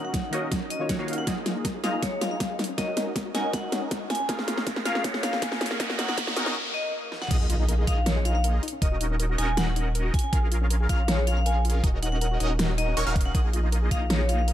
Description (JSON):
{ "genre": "future bass", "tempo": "159 BPM", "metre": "4/4", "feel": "half-time", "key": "Eb minor", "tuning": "A4 = 440 Hz", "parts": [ { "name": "vibraphone with medium hard mallets", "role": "melody", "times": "0.0-14.4 s", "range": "Db5 to Ab5", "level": "-32 LUFS", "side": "left 1 dB", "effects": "sidechain pumping, low-pass filter, tape echo" }, { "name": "soft round pluck", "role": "accompaniment", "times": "0.0-1.3 s", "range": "Eb3 to F5", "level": "-36 LUFS", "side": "left 2 dB", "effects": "chorus, sidechain pumping, ping-pong delay" }, { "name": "supersaw stab", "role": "riff", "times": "0.0-14.5 s", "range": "Bb3 to F5", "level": "-32 LUFS", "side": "equal", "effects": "phaser, sidechain pumping, low-pass filter" }, { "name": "saturated sub bass", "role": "bass", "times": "0.0-14.5 s", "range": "Eb1 to Eb2", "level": "-26 LUFS", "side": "equal", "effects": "sidechain pumping, high-pass filter" }, { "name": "dubstep drum kit", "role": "drums", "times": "0.1-14.5 s", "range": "crash cymbal, hi-hat, snare drum", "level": "-30 LUFS", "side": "equal", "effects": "overdrive" }, { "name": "electronic kick drum", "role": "drums", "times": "0.1-14.0 s", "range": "none", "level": "-26 LUFS", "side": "equal", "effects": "overdrive" }, { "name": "soft round pluck", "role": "arpeggios", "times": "1.3-14.5 s", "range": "Db4 to Bb4", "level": "-38 LUFS", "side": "left 6 dB", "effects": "chorus, cassette tape, sidechain pumping, ping-pong delay" }, { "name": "riser, swell and impact", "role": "sound effects", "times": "3.6-8.8 s", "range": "none", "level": "-35 LUFS", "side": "right 1 dB", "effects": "none" }, { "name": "wide unison pluck", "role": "arpeggios", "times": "7.3-14.5 s", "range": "Db6 to F6", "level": "-37 LUFS", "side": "right 2 dB", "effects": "sidechain pumping" } ], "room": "little or no reverb", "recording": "high-pass filter", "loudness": "-23 LUFS", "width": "side -12 dB against mid", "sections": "0.0-7.3 A section; 7.3-14.5 B section", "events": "build-up 0.0-7.3; drum fill 0.0-6.6, 7.1; filter sweep on supersaw synth 0.0-7.3; filter sweep 0.0-7.3; riser 3.6-6.6; break 6.6-7.3; swell 6.6-7.3; drop 7.3-14.5; impact 7.3-8.8", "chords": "0.0 Ebm7; 1.3 Bb7sus4; 2.6 Ebm7; 4.1 Bbm7; 5.8 Ebm7; 7.3 Bb7sus4; 8.6 Ebm7; 10.1 Bbm7; 11.8 Ebm7; 13.3 Bb7sus4", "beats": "0.14 0.52 0.89 | 1.27 1.65 2.02 2.40 | 2.78 3.16 3.54 3.91 | 4.29 4.67 5.04 5.42 | 5.80 6.18 6.55 6.93 | 7.31 7.69 8.06 8.44 | 8.82 9.20 9.57 9.95 | 10.33 10.70 11.08 11.46 | 11.84 12.21 12.59 12.97 | 13.35 13.72 14.10 14.48" }